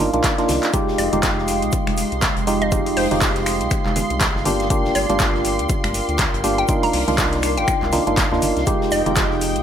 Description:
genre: deep house.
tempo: 121 BPM.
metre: 4/4.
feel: swing 58% on 16ths.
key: F dorian.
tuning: A4 = 438 Hz.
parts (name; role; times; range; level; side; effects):
hollow square pluck; melody; 0.0-9.1 s; C5 to Bb5; -26 LUFS; left 1 dB; chorus, dub echo.
warbly tape-like pad; sustained chords; 0.0-9.6 s; Ab3 to Eb6; -29 LUFS; right 1 dB; chorus, built-in reverb, sidechain pumping.
percussive organ stab; stabs; 0.0-9.6 s; Ab3 to G4; -21 LUFS; right 1 dB; chorus, sidechain pumping, ping-pong delay.
round analog bass; bass; 0.0-9.6 s; F1 to Eb2; -27 LUFS; equal; sidechain pumping.
warbly tape-like pad; texture; 0.0-9.6 s; Ab3 to G5; -30 LUFS; left 1 dB; chorus, built-in reverb, sidechain pumping.
deep house drum kit; drums; 0.1-9.6 s; finger snaps, handclaps, hi-hat; -24 LUFS; equal; overdrive.
congas; percussion; 0.1-9.1 s; none; -31 LUFS; right 3 dB; none.
electronic kick drum; drums; 0.2-9.3 s; none; -23 LUFS; equal; overdrive.
loose indie drum kit; drums; 0.2-9.6 s; hi-hat, shaker, snare drum; -33 LUFS; left 2 dB; high-pass filter on hats, high-pass filter on snare, high-pass filter on perc, high-pass filter on room.
analog string pad; texture; 0.7-9.6 s; G5 to C6; -32 LUFS; right 1 dB; ensemble chorus, sidechain pumping.
room: light reverb.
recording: none.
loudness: -17 LUFS.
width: side -9 dB against mid.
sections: 0.0-9.6 A section.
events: drum fill 0.2-0.7.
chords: 0.0 Cm11; 0.7 Fm9; 4.5 Gm7; 6.7 Cm11; 8.7 Fm9.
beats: 0.24 | 0.74 1.23 1.73 2.22 | 2.72 3.21 3.71 4.21 | 4.70 5.20 5.70 6.19 | 6.69 7.18 7.68 8.17 | 8.67 9.17.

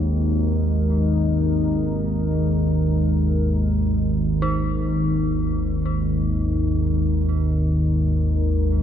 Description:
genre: dark ambient drone.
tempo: free time.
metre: none.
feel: none.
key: unclear.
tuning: A4 = 440 Hz.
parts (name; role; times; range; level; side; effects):
deep dark ambient pad; sustained chords; 0.0-8.8 s; G#3 to A#4; -26 LUFS; left 2 dB; chorus, built-in reverb.
dark detuned synth bell; arpeggios; 0.0-8.8 s; D#4; -34 LUFS; left 1 dB; chorus, ping-pong delay.
analog drone; drone; 0.0-8.8 s; G#1 to D#2; -20 LUFS; equal; chorus.
room: wet cathedral reverb, RT60 6.8 s.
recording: none.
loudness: -19 LUFS.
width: side -9 dB against mid.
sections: 0.0-8.8 A section.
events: fade-out on synth bell 0.0-8.8.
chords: 0.0 G#5.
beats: free time.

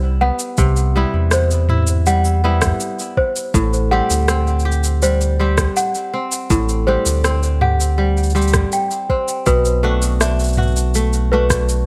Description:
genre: folktronica.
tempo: 81 BPM.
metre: 4/4.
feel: straight.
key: unclear.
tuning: A4 = 440 Hz.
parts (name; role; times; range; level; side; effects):
worn celesta; second line; 0.0-11.9 s; B4 to G5; -24 LUFS; equal; digital delay.
kora; arpeggios; 0.0-11.9 s; A2 to G4; -24 LUFS; equal; digital delay.
warm sub bass; bass; 0.0-11.9 s; A1 to E2; -19 LUFS; equal; tube saturation.
organic electronic drum kit; drums; 0.4-11.8 s; rim click, shaker, toms; -24 LUFS; equal; studio reverb.
electronic kick drum; drums; 0.6-11.7 s; none; -22 LUFS; equal; studio reverb.
room: light reverb, digital ambience.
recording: none.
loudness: -17 LUFS.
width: mono.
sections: 0.0-11.9 A section.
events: none.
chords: 0.0 Cmaj7; 3.5 Am7; 9.5 Bm7.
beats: | 0.58 1.32 2.06 2.80 | 3.54 4.28 5.02 5.76 | 6.51 7.25 7.99 8.73 | 9.47 10.21 10.95 11.69.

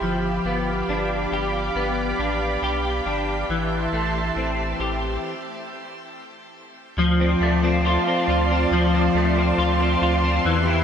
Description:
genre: dream pop.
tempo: 69 BPM.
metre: 4/4.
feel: straight.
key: D dorian.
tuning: A4 = 440 Hz.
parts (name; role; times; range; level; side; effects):
lush unison pad; sustained chords; 0.0-10.8 s; F4 to D6; -26 LUFS; right 3 dB; chorus.
electric guitar at the edge of break-up; arpeggios; 0.0-10.8 s; E3 to G4; -22 LUFS; left 2 dB; ensemble chorus, ping-pong delay.
saturated sub bass; bass; 0.0-10.8 s; G1 to E2; -26 LUFS; equal; none.
room: moderate shimmer reverb, RT60 5.0 s.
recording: none.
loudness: -19 LUFS.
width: side -8 dB against mid.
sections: 0.0-7.0 A section; 7.0-10.8 B section.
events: stop 5.2-7.0.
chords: 0.0 G7; 3.5 Am7; 7.0 Dm7.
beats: | 0.02 0.89 1.76 2.63 | 3.50 4.37 5.24 6.11 | 6.98 7.85 8.72 9.59 | 10.46.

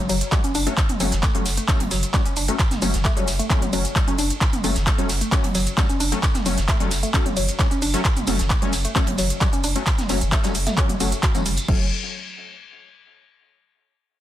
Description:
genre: driving peak-time techno.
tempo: 132 BPM.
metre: 4/4.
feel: straight.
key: F# phrygian.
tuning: A4 = 440 Hz.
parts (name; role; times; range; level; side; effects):
woody wave-folded pluck; riff; 0.0-11.9 s; E3 to F#4; -28 LUFS; equal; chorus, sidechain pumping, dub echo.
saturated sub bass; bass; 0.0-11.9 s; F#1; -26 LUFS; equal; overdrive, sidechain pumping, low-pass filter.
techno drum kit; drums; 0.1-11.8 s; crash cymbal, handclaps, hi-hat, ride cymbal, shaker, toms; -24 LUFS; right 1 dB; none.
tight metal drum kit; drums; 0.1-11.7 s; hi-hat, snare drum, tambourine; -35 LUFS; right 1 dB; high-pass filter on hats, high-pass filter on snare, high-pass filter on perc, high-pass filter on room.
rave stab; stabs; 0.3-11.9 s; F#3 to C#4; -28 LUFS; left 3 dB; chorus, built-in reverb, sidechain pumping, ping-pong delay.
electronic kick drum; drums; 0.3-11.8 s; none; -22 LUFS; equal; none.
room: light reverb.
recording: dense, heavily limited modern master.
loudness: -18 LUFS.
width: side -13 dB against mid.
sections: 0.0-11.7 A section; 11.7-13.5 B section.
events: drop 0.0-11.7.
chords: 0.0 F#m.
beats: 0.32 | 0.78 1.23 1.68 2.14 | 2.59 3.05 3.50 3.96 | 4.41 4.87 5.32 5.78 | 6.23 6.68 7.14 7.59 | 8.05 8.50 8.96 9.41 | 9.87 10.32 10.78 11.23 | 11.68.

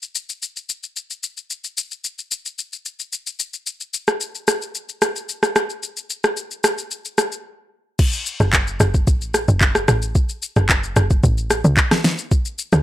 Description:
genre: amapiano.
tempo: 111 BPM.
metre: 4/4.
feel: straight.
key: F# minor.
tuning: A4 = 439 Hz.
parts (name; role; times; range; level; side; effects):
smooth R&B drum kit; drums; 0.0-12.8 s; crash cymbal, handclaps, kick drum, rim click, shaker, snare drum; -18 LUFS; equal; none.
tight log drum bass; bass; 8.4-12.8 s; F#1 to D2; -18 LUFS; equal; none.
room: little or no reverb.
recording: dry, gritty hardware recording.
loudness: -18 LUFS.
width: side -14 dB against mid.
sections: 0.0-8.0 A section; 8.0-12.8 B section.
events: break 7.5-8.0; drop 8.0-12.8.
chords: none.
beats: 0.42 0.96 | 1.50 2.04 2.58 3.13 | 3.67 4.21 4.75 5.29 | 5.83 6.37 6.91 7.45 | 7.99 8.53 9.07 9.61 | 10.15 10.69 11.23 11.77 | 12.31.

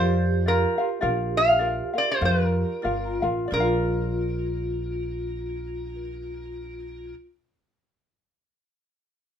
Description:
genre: Hawaiian.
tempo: 86-111 BPM.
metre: 4/4.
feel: swing 57% on 8ths.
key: Bb major.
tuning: A4 = 442 Hz.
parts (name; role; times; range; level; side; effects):
metal-body resonator slide guitar; melody; 0.0-7.1 s; Bb4 to F5; -24 LUFS; equal; none.
vibraphone with medium hard mallets; second line; 0.0-7.1 s; F4 to G4; -31 LUFS; right 1 dB; none.
ukulele; accompaniment; 0.0-7.2 s; F4 to F5; -29 LUFS; left 2 dB; none.
upright bass; bass; 0.0-7.1 s; G1 to F2; -28 LUFS; equal; none.
room: moderate studio reverb, RT60 0.6 s.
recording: minimal, uncompressed stereo recording.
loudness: -22 LUFS.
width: side -8 dB against mid.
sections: 0.0-3.5 A section; 3.5-9.1 B section.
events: slowing down 0.0-3.5.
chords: 0.0 Bb.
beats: 0.46 | 1.02 1.60 2.21 2.84 | 3.51 4.21 4.90 5.60 | 6.29 6.99.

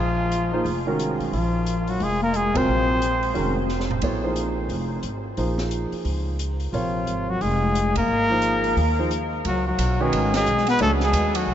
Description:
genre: modal jazz.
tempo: 177 BPM.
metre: 4/4.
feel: swing 62% on 8ths.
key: Bb minor.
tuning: A4 = 436 Hz.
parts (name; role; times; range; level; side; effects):
clear trumpet; melody; 0.0-3.6, 6.7-11.5 s; F4 to C5; -25 LUFS; equal; none.
dark bass clarinet; second line; 0.0-3.6, 6.7-11.5 s; F3 to C4; -27 LUFS; left 3 dB; none.
upright bass; bass; 0.0-11.5 s; F1 to Eb2; -26 LUFS; equal; none.
open jazz drum kit; drums; 0.3-11.4 s; hi-hat, kick drum, ride cymbal, snare drum, toms; -34 LUFS; equal; none.
warm concert grand piano; accompaniment; 0.5-11.0 s; C3 to Db5; -28 LUFS; right 2 dB; none.
room: wet huge ambient reverb, RT60 8.8 s.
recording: in a vast, echoing space, nothing above 7.8 kHz.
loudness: -20 LUFS.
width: side -10 dB against mid.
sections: 0.0-9.4 A section; 9.4-11.5 B section.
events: band accent 2.5, 7.9, 10.3; drum fill 3.7-4.0; break 9.1-9.4.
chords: 0.0 Bbm11; 8.1 Ab69; 9.4 C#9sus4.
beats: 0.31 0.65 0.99 | 1.32 1.66 2.00 2.34 | 2.67 3.01 3.35 3.69 | 4.03 4.37 4.70 5.04 | 5.38 5.72 6.06 6.39 | 6.73 7.07 7.41 7.75 | 8.09 8.43 8.77 9.11 | 9.44 9.78 10.12 10.46 | 10.80 11.14 11.48.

